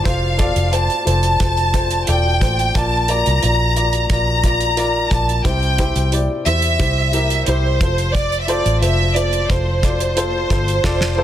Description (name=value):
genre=piano-driven pop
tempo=89 BPM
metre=4/4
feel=straight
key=unclear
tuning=A4 = 440 Hz
part: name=rich studio violin section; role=melody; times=0.0-11.2 s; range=C5 to Bb5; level=-20 LUFS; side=right 1 dB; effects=none
part: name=dark upright piano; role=accompaniment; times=0.0-11.2 s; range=Bb2 to D5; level=-22 LUFS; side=left 2 dB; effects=none
part: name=vintage muted fingered electric bass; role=bass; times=0.0-11.2 s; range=E1 to E2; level=-19 LUFS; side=equal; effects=none
part: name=damped 70s drum kit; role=drums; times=0.1-11.2 s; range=hi-hat, kick drum, snare drum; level=-21 LUFS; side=equal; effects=soft clipping on snare
room=little or no reverb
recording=dense, heavily limited modern master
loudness=-15 LUFS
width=side -11 dB against mid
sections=0.0-11.2 A section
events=drum fill 10.8-11.2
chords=0.0 F; 2.8 Bb; 5.4 C; 7.8 F